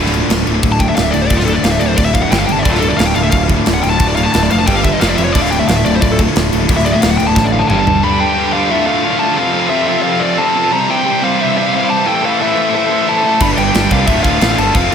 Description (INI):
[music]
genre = heavy metal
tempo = 178 BPM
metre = 4/4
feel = straight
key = D minor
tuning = A4 = 440 Hz
[part]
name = high-gain distorted guitar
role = riff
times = 0.0-14.9 s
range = D2 to C5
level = -20 LUFS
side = right 8 dB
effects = distortion, slapback echo
[part]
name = overdriven electric guitar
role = riff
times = 0.0-14.9 s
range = D2 to C4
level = -18 LUFS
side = equal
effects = slapback echo
[part]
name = scooped high-gain guitar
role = riff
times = 0.0-14.9 s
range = D2 to G3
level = -21 LUFS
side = left 8 dB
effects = distortion, slapback echo
[part]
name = growling picked electric bass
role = bass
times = 0.0-8.0, 13.4-14.9 s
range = D1 to C2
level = -18 LUFS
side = equal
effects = overdrive
[part]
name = tight metal drum kit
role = drums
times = 0.1-7.9, 13.4-14.9 s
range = crash cymbal, kick drum, snare drum, toms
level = -16 LUFS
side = equal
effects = none
[part]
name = high-gain lead guitar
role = melody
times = 0.7-14.9 s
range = F4 to B5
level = -16 LUFS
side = left 2 dB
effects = distortion, slapback echo, digital delay
[part]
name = rich studio string section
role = sustained chords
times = 2.6-14.9 s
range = C3 to C5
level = -25 LUFS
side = right 1 dB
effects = none
[sound]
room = moderate lush hall reverb, RT60 1.7 s, small room ambience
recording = big arena sound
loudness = -11 LUFS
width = side -7 dB against mid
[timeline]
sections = 0.0-8.0 A section; 8.0-14.9 B section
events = lead electric guitar solo 0.0-8.0; drum fill 7.4-8.0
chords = 0.0 D5; 2.3 G5; 2.7 Dm; 4.7 G5; 5.0 F5; 5.3 Dm; 7.7 G5; 8.0 G; 8.7 Dm; 9.4 F; 10.7 C; 12.1 Am; 13.4 G; 14.1 Dm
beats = 0.30 0.64 0.97 | 1.31 1.65 1.98 2.32 | 2.66 2.99 3.33 3.67 | 4.00 4.34 4.67 5.01 | 5.35 5.68 6.02 6.36 | 6.69 7.03 7.36 7.70 | 8.04 8.37 8.71 9.04 | 9.38 9.71 10.05 10.39 | 10.72 11.06 11.39 11.73 | 12.06 12.40 12.74 13.07 | 13.41 13.74 14.08 14.41 | 14.75